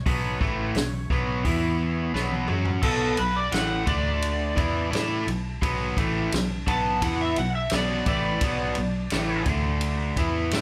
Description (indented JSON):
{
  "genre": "blues rock power trio and southern rock",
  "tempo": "86 BPM",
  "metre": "4/4",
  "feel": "straight",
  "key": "B minor",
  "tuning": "A4 = 440 Hz",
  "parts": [
    { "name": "overdriven slide guitar", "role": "melody", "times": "0.0-9.4 s", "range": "A4 to A5", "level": "-32 LUFS", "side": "equal", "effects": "none" },
    { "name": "vintage muted fingered electric bass", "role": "bass", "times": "0.0-10.6 s", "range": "A1 to A2", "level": "-32 LUFS", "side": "equal", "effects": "none" },
    { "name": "crunchy overdriven guitar", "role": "riff", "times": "0.1-10.6 s", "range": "A2 to A4", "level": "-29 LUFS", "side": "equal", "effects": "none" },
    { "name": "vintage drum kit", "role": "drums", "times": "0.1-10.6 s", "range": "crash cymbal, hi-hat, kick drum, ride cymbal, snare drum, toms", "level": "-31 LUFS", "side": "equal", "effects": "none" }
  ],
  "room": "light reverb",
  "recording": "band playing live in one room",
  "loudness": "-25 LUFS",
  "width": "mono",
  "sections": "0.0-2.8 A section; 2.8-10.6 B section",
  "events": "drum fill 2.1-2.8; electric slide guitar solo 2.8-10.6",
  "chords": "0.0 Bm; 1.4 E5; 2.1 B5; 3.9 D5; 4.6 Bm; 9.5 D5"
}